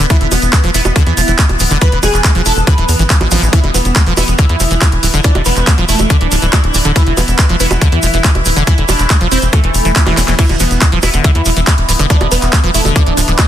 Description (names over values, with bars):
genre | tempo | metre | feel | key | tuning
psychedelic trance | 140 BPM | 4/4 | straight | unclear | A4 = 440 Hz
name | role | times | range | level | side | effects
overtone-sweeping drone | sustained chords | 0.0-13.5 s | E3 to E4 | -20 LUFS | equal | chorus, built-in reverb, phaser, sidechain pumping
liquid acid bass | riff | 0.0-13.5 s | D3 to E4 | -18 LUFS | equal | chorus, auto-pan, sidechain pumping, digital delay
tight sequencer bass | bass | 0.0-13.3 s | D1 to E2 | -14 LUFS | equal | none
tube shaker | percussion | 0.0-13.5 s | none | -22 LUFS | right 5 dB | none
downlifter, zap and swell | sound effects | 0.0-0.1, 3.3-3.4, 9.7-10.4 s | none | -28 LUFS | left 1 dB | none
supersaw stab | melody | 0.1-13.5 s | A3 to B4 | -19 LUFS | right 1 dB | phaser, sidechain pumping, digital delay
drum and bass drum kit | drums | 0.1-13.5 s | bongos, crash cymbal, handclaps, hi-hat, snare drum | -17 LUFS | equal | overdrive, studio ambience
electronic kick drum | drums | 0.1-13.5 s | none | -11 LUFS | equal | overdrive, studio ambience
resonant blip pluck | second line | 11.9-13.5 s | G#3 to B3 | -27 LUFS | left 1 dB | none
room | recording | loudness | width
little or no reverb | dense, heavily limited modern master | -9 LUFS | side -11 dB against mid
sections
0.0-13.5 A section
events
drum fill 10.0-10.4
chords
0.0 E5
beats
| 0.10 0.53 0.96 1.39 | 1.81 2.24 2.67 3.10 | 3.53 3.96 4.39 4.82 | 5.24 5.67 6.10 6.53 | 6.96 7.39 7.82 8.24 | 8.67 9.10 9.53 9.96 | 10.39 10.81 11.24 11.67 | 12.10 12.53 12.96 13.39